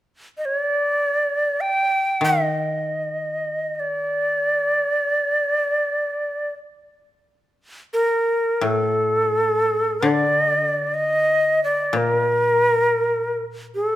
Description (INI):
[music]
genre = japanese traditional, Japanese chamber music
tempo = free time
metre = none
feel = none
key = D miyako bushi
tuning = A4 = 440 Hz
[part]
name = breathy bright shakuhachi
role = melody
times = 0.4-14.0 s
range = A4 to G5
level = -19 LUFS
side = equal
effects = none
[part]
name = koto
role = accompaniment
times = 2.2-14.0 s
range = A2 to Eb3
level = -26 LUFS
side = left 2 dB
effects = none
[sound]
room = moderate recital hall reverb, RT60 1.7 s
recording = none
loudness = -18 LUFS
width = side -14 dB against mid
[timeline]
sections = 0.0-14.0 A section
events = none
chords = none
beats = free time